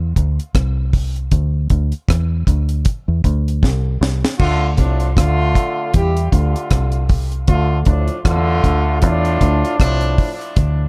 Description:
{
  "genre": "dub reggae",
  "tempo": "78 BPM",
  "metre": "4/4",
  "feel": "swing 57% on 16ths",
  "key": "D minor",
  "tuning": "A4 = 441 Hz",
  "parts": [
    { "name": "deep dub fingered electric bass", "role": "bass", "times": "0.0-10.9 s", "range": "C2 to E2", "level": "-19 LUFS", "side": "equal", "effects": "none" },
    { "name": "deep reggae drum kit", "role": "drums", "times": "0.2-10.8 s", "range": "crash cymbal, hi-hat, kick drum, rim click, snare drum", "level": "-19 LUFS", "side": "equal", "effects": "none" },
    { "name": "warm horn section", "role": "second line", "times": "4.4-10.4 s", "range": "A2 to G4", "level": "-22 LUFS", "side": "equal", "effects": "dub echo" }
  ],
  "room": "small room ambience",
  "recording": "dark, warm production",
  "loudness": "-17 LUFS",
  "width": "mono",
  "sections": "0.0-4.4 A section; 4.4-10.9 B section",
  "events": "drum fill 3.6-4.4",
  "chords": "0.0 Cadd9"
}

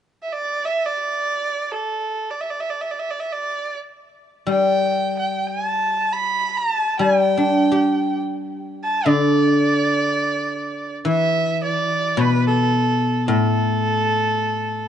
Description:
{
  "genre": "chinese traditional, Chinese chamber ensemble",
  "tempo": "free time",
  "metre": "none",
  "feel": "none",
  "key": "D zhi mode",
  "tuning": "A4 = 437 Hz",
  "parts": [
    { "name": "rich erhu", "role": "melody", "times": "0.2-14.9 s", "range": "A4 to B5", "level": "-22 LUFS", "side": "right 2 dB", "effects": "none" },
    { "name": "guzheng", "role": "accompaniment", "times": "4.5-14.9 s", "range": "A2 to G4", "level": "-19 LUFS", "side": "left 1 dB", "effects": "none" }
  ],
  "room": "light reverb",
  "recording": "dark, warm production, nothing above 10.7 kHz",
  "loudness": "-18 LUFS",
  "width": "side -9 dB against mid",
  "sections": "0.0-11.1 A section; 11.1-14.9 B section",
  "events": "none",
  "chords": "none"
}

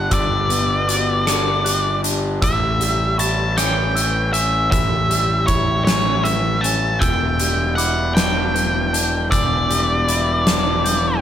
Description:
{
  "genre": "post-rock",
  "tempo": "52 BPM (dotted quarters)",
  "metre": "6/8",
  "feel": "straight",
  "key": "unclear",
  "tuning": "A4 = 441 Hz",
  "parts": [
    { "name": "octave-fuzz lead guitar", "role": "melody", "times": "0.0-11.2 s", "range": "C#5 to A5", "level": "-20 LUFS", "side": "equal", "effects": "distortion, slapback echo" },
    { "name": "electric guitar through a small old amp", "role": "arpeggios", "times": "0.0-11.2 s", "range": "E2 to F#4", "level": "-25 LUFS", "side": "left 3 dB", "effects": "slapback echo" },
    { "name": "glockenspiel with rubber mallets", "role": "arpeggios", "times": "0.0-11.2 s", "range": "C#6 to G6", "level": "-30 LUFS", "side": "right 2 dB", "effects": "slapback echo" },
    { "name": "fuzz picked electric bass", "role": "bass", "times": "0.0-11.2 s", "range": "E1 to A1", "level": "-22 LUFS", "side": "equal", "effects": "overdrive" },
    { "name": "oversized low-tuned drum kit", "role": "drums", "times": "0.1-11.0 s", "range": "hi-hat, kick drum, rim click, snare drum", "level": "-22 LUFS", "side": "equal", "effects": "none" }
  ],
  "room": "light reverb, studio ambience",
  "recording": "none",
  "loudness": "-16 LUFS",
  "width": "side -10 dB against mid",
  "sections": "0.0-11.2 A section",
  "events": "none",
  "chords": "0.0 Gmaj7; 2.4 A7; 7.0 Em7"
}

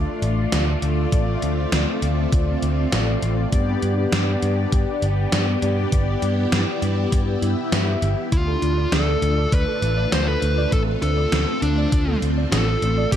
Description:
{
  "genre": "synthwave",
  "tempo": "100 BPM",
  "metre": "4/4",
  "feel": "straight",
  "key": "D dorian",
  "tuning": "A4 = 440 Hz",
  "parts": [
    { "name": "string machine, full ensemble", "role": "sustained chords", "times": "0.0-13.2 s", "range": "A3 to G4", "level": "-26 LUFS", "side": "equal", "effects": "phaser, ensemble chorus, shimmer reverb" },
    { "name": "mellow synth brass", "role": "stabs", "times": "0.0-8.3 s", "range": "A3 to E5", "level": "-27 LUFS", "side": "left 3 dB", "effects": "chorus, digital delay, shimmer reverb" },
    { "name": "picked electric bass", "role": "bass", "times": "0.0-13.2 s", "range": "G1 to G2", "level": "-22 LUFS", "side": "equal", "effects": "tube saturation" },
    { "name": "gated 80s digital drum machine", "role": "drums", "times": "0.2-13.2 s", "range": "hi-hat, snare drum", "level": "-26 LUFS", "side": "equal", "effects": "gated reverb, gated reverb snare, overdrive, studio reverb" },
    { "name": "electronic kick drum", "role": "drums", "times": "1.1-13.2 s", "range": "none", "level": "-21 LUFS", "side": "equal", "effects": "overdrive, studio reverb" },
    { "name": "dark smooth lead guitar", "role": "melody", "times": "8.3-13.2 s", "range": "D4 to C5", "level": "-24 LUFS", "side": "left 1 dB", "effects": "overdrive, digital delay, shimmer reverb" },
    { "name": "soft round pluck", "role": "arpeggios", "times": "8.3-13.2 s", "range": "B3 to D5", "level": "-30 LUFS", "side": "right 3 dB", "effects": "wide subtle chorus, digital delay, shimmer reverb" }
  ],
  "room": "moderate plate reverb, RT60 2.5 s",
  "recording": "dark, warm production",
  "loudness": "-18 LUFS",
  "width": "side -10 dB against mid",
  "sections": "0.0-13.2 A section",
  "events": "none",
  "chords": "0.0 Dm; 3.5 G; 8.3 Dm"
}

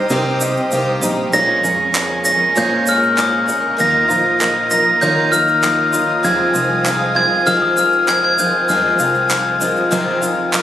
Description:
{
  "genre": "indie folk with a building arrangement",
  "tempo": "98 BPM",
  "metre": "4/4",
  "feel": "straight",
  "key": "F minor",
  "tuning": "A4 = 440 Hz",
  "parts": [
    { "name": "glockenspiel with hard plastic mallets", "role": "melody", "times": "0.0-10.5 s", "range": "Eb6 to Bb6", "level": "-15 LUFS", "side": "left 1 dB", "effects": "none" },
    { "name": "felt-muted upright piano", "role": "accompaniment", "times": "0.0-10.6 s", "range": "F1 to F5", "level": "-24 LUFS", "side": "right 2 dB", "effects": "none" },
    { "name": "picked twelve-string acoustic guitar", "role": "accompaniment", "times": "0.0-10.6 s", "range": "F2 to Ab4", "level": "-21 LUFS", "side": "left 2 dB", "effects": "none" },
    { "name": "warm studio string section", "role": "sustained chords", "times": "0.0-10.6 s", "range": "Bb4 to Eb6", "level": "-26 LUFS", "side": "equal", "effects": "none" },
    { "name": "fingered electric bass", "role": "bass", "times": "0.1-10.6 s", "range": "Bb1 to F3", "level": "-24 LUFS", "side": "equal", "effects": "none" },
    { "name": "egg shaker", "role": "percussion", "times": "0.1-10.6 s", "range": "none", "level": "-27 LUFS", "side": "right 2 dB", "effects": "none" },
    { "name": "group handclap", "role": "percussion", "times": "1.9-10.6 s", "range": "none", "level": "-18 LUFS", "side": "right 2 dB", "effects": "none" }
  ],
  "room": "light reverb",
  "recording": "recorded on a phone in the room, club reverb, compression",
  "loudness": "-13 LUFS",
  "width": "side -11 dB against mid",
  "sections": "0.0-10.6 A section",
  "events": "felt piano fill 9.9-10.6",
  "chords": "0.0 Cm; 1.3 Bbm7; 3.8 Ebsus2; 6.2 Fm7"
}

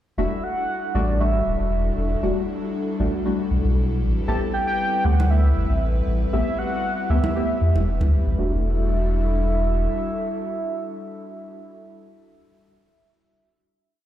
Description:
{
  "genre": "deep house",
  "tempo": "117 BPM",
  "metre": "4/4",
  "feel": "swing 54% on 16ths",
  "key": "E minor",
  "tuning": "A4 = 440 Hz",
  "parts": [
    { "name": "warm velvety synth lead", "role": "melody", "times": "0.2-11.5 s", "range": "D5 to A5", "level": "-27 LUFS", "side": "right 2 dB", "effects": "chorus, tremolo, tape echo" },
    { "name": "airy breathy pad", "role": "sustained chords", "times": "0.4-11.5 s", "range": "G3 to B4", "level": "-29 LUFS", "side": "left 3 dB", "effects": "chorus" },
    { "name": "deep mellow chord stab", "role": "stabs", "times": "0.2-11.5 s", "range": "G3 to G4", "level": "-28 LUFS", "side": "left 1 dB", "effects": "chorus, phaser, tape echo" },
    { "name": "warm sub bass", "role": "bass", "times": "0.2-9.9 s", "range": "D1 to E2", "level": "-20 LUFS", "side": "equal", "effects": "tube saturation" },
    { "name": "congas", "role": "percussion", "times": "5.2-8.1 s", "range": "none", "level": "-28 LUFS", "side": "right 1 dB", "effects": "none" }
  ],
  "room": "light reverb",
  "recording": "played on a big sound system in a bare room, large studio reverb",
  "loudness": "-20 LUFS",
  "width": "side -12 dB against mid",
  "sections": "0.2-8.4 drop; 8.4-12.5 final chord",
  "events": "drop 0.2-8.4",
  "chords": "0.2 Em11; 4.0 Am9; 8.4 Em11"
}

